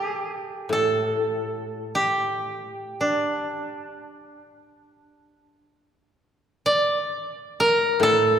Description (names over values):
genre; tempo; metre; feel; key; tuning
japanese traditional, Japanese chamber music; free time; none; none; unclear; A4 = 440 Hz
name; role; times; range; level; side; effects
koto; melody; 0.0-8.4 s; D4 to D5; -23 LUFS; equal; none
koto; accompaniment; 0.7-3.3, 8.0-8.4 s; A2; -23 LUFS; right 2 dB; none
room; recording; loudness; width
wet concert hall reverb, RT60 2.3 s; recorded in a church or concert hall; -22 LUFS; side -8 dB against mid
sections
0.0-5.7 A section; 5.7-8.4 A section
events
none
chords
none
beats
free time